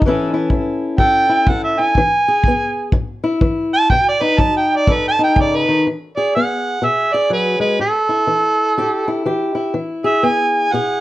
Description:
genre	acoustic country blues, solo or duo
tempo	123 BPM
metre	4/4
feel	swing 60% on 8ths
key	unclear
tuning	A4 = 437 Hz
part	kick drum	drums	0.0-5.5 s	none	-18 LUFS	equal	none
part	fingerpicked swing-style acoustic guitar	accompaniment	0.1-11.0 s	F#2 to A4	-19 LUFS	left 2 dB	none
part	overdriven harmonica	melody	1.0-11.0 s	A4 to A5	-15 LUFS	right 2 dB	plate reverb
room	moderate studio reverb, RT60 0.6 s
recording	worn, warbling old tape, cassette tape, warbly pitch drift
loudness	-14 LUFS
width	side -15 dB against mid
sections	0.0-5.9 A section; 5.9-11.0 B section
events	harmonica solo 0.0-5.9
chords	0.0 A7; 2.0 E; 2.9 A5; 3.9 B7; 5.9 E; 7.8 A5; 9.8 E

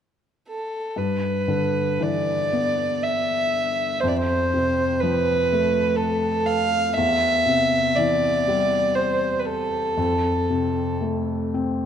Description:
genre	celtic folk, Celtic slow air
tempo	60 BPM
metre	3/4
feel	uneven beats, rubato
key	G mixolydian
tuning	A4 = 440 Hz
part	dark fiddle	melody	0.5-11.0 s	A4 to F5	-22 LUFS	right 1 dB	none
part	felt-muted upright piano	accompaniment	1.0-11.9 s	E2 to C4	-24 LUFS	left 2 dB	none
room	wet church reverb, RT60 2.7 s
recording	minimal, uncompressed stereo recording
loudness	-20 LUFS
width	side -8 dB against mid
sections	1.0-11.9 A section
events	none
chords	0.0 N.C.; 1.0 G6; 4.0 F; 7.0 C/E; 10.0 F

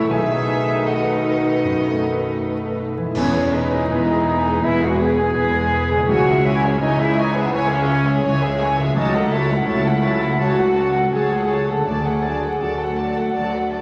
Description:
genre	cinematic, emotional film score for orchestra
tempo	82 BPM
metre	4/4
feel	rubato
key	E major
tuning	A4 = 442 Hz
part	dark studio violin section	melody	0.0-13.8 s	G#4 to A5	-30 LUFS	equal	none
part	concert flute	second line	0.0-13.8 s	B4 to A5	-30 LUFS	equal	none
part	mellow clarinet	second line	0.0-2.8 s	E4 to G#4	-31 LUFS	equal	none
part	rich symphonic violin section	second line	0.0-13.8 s	G#4 to E5	-31 LUFS	equal	none
part	dark symphonic viola section	accompaniment	0.0-13.8 s	D#3 to B3	-30 LUFS	equal	none
part	warm concert grand piano	accompaniment	0.0-13.8 s	B1 to A5	-29 LUFS	equal	none
part	concert harp	arpeggios	0.0-13.8 s	B2 to C#5	-32 LUFS	equal	none
part	warm symphonic cello section	bass	0.0-13.8 s	C#2 to E4	-28 LUFS	equal	none
part	warm symphonic double bass section	bass	0.0-13.8 s	E1 to D2	-28 LUFS	equal	none
part	warm French horn section	sustained chords	0.1-13.8 s	D#3 to A4	-25 LUFS	equal	none
part	clash cymbals and concert bass drum	percussion	3.2-4.6 s	none	-38 LUFS	equal	none
room	wet recital hall reverb, RT60 1.7 s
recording	vinyl crackle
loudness	-19 LUFS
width	mono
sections	0.0-3.2 A section; 3.2-13.8 B section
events	band accent 3.2-3.9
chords	0.1 B7; 3.2 E; 6.1 C#m; 9.0 F#m/C#; 11.9 D

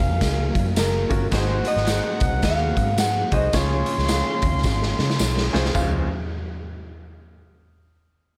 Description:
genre	uptempo 1960s-style soul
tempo	108 BPM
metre	4/4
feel	swing 61% on 8ths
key	Db major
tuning	A4 = 437 Hz
part	electric guitar through a small old amp	melody	0.0-5.2 s	Bb4 to Gb5	-29 LUFS	equal	lush chorus
part	warm horn section	second line	0.0-6.0 s	Db4 to C6	-32 LUFS	equal	none
part	percussive tonewheel organ	sustained chords	0.0-6.1 s	F3 to Db5	-36 LUFS	equal	none
part	vintage muted fingered electric bass	bass	0.0-6.1 s	Gb1 to Db3	-26 LUFS	equal	none
part	raw garage drum kit	drums	0.0-5.9 s	crash cymbal, hi-hat, kick drum, snare drum, toms	-26 LUFS	equal	none
part	congas	percussion	0.0-6.1 s	none	-40 LUFS	equal	none
part	tambourine	percussion	0.2-6.1 s	none	-37 LUFS	equal	none
part	clear grand piano	accompaniment	1.1-6.1 s	Db2 to Db5	-31 LUFS	equal	none
room	light reverb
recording	none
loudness	-22 LUFS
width	mono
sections	0.0-5.8 A section; 5.8-8.0 B section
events	drum fill 4.6-5.8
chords	0.0 Gbmaj7; 1.3 Ab7; 3.5 Dbmaj7

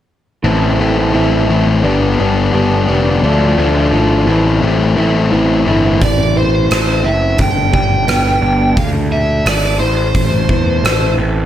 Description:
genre	quiet-loud alternative rock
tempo	87 BPM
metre	4/4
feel	straight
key	A minor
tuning	A4 = 435 Hz
part	electric guitar through a small old amp	arpeggios	0.4-11.5 s	G2 to A4	-19 LUFS	right 4 dB	analog delay
part	biting overdriven guitar	riff	0.4-6.0 s	G2 to E4	-14 LUFS	left 4 dB	spring reverb
part	fuzz picked electric bass	bass	0.4-11.5 s	F1 to E2	-15 LUFS	right 1 dB	overdrive
part	bluesy overdriven lead guitar	melody	6.0-11.1 s	C5 to G5	-17 LUFS	left 1 dB	distortion
part	big rock drum kit	drums	6.0-11.0 s	hi-hat, kick drum, rim click	-17 LUFS	equal	none
room	light reverb, studio ambience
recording	none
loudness	-11 LUFS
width	side -11 dB against mid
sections	0.4-6.0 A section; 6.0-11.5 B section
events	none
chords	0.4 Am; 1.8 G; 3.2 Dm; 4.3 Am; 7.4 G; 8.8 D5; 9.8 Am

